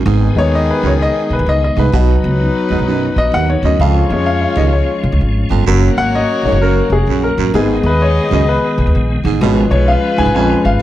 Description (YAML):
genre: soul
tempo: 128 BPM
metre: 4/4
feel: swing 64% on 8ths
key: G# dorian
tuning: A4 = 440 Hz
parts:
  - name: tonewheel organ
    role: sustained chords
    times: 0.0-10.8 s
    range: D#3 to D#4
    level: -22 LUFS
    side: left 1 dB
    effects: slow rotary speaker, overdrive, chorus vibrato
  - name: breathy baritone saxophone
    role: riff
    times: 0.0-10.6 s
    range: D#2 to B2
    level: -20 LUFS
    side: right 8 dB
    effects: none
  - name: warm horn section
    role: second line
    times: 0.1-10.8 s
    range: D#3 to D#5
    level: -20 LUFS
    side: left 3 dB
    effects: none
  - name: upright bass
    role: bass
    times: 0.1-10.8 s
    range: E#1 to E#2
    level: -14 LUFS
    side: equal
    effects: none
  - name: warm baby grand piano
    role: accompaniment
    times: 0.4-10.8 s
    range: D#3 to G#5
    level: -17 LUFS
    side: left 3 dB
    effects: none
room: light reverb, small room ambience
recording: dark, warm production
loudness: -11 LUFS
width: side -13 dB against mid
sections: 0.1-10.8 A section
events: grand piano solo 0.1-10.8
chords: 0.1 G#m; 1.9 B; 3.8 C#; 5.7 F#; 7.5 G#m; 9.4 C#/G#